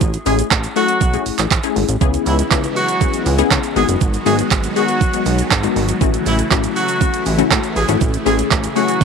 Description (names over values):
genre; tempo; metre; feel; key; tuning
dance-pop; 120 BPM; 4/4; straight; unclear; A4 = 437 Hz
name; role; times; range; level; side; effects
chorused synth bass; bass; 0.0-9.0 s; F#1 to C#3; -19 LUFS; right 1 dB; sidechain pumping
pop drum kit; drums; 0.0-9.0 s; handclaps, hi-hat, kick drum, shaker, snare drum; -18 LUFS; right 4 dB; overdrive
warm horn section; melody; 0.3-9.0 s; E3 to G#4; -21 LUFS; right 1 dB; slapback echo
wide unison pluck; accompaniment; 0.3-9.0 s; G#3 to B4; -20 LUFS; left 12 dB; sidechain pumping
supersaw pad; sustained chords; 2.0-9.0 s; C#3 to G#4; -24 LUFS; right 1 dB; phaser, sidechain pumping
room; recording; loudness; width
moderate spring reverb, RT60 1.7 s, digital ambience; 1960s-style stereo; -14 LUFS; side -6 dB against mid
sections
0.0-9.0 A section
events
none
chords
0.0 Amaj7; 2.0 C#m7; 3.8 G#m7; 6.0 F#m7/A; 8.0 Amaj7